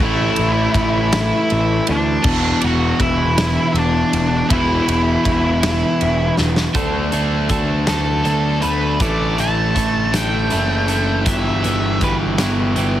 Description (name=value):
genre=quiet-loud alternative rock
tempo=53 BPM (dotted quarters)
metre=6/8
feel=straight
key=E minor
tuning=A4 = 440 Hz
part: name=octave-fuzz lead guitar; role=melody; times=0.0-12.1 s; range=D4 to A5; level=-21 LUFS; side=equal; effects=distortion
part: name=overdriven electric guitar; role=riff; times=0.0-13.0 s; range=E2 to D4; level=-20 LUFS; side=left 1 dB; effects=none
part: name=fuzz picked electric bass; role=bass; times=0.0-13.0 s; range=E1 to D2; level=-20 LUFS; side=equal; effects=overdrive
part: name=big rock drum kit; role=drums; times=0.4-12.9 s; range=crash cymbal, hi-hat, kick drum, ride cymbal, snare drum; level=-22 LUFS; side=equal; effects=none
part: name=clean electric guitar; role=arpeggios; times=6.7-13.0 s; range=A2 to A4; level=-25 LUFS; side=right 5 dB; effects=wide subtle chorus
room=little or no reverb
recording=heavily compressed radio sound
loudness=-15 LUFS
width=side -12 dB against mid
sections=0.0-6.8 A section; 6.8-13.0 B section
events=drum fill 6.4-6.8; lead electric guitar solo 6.8-13.0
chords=0.0 A5; 2.2 E5; 6.8 D6; 9.0 Asus4; 11.3 Em/G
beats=1.12 | 2.25 3.37 | 4.50 5.62 | 6.75 7.88 | 9.01 10.13 | 11.26 12.39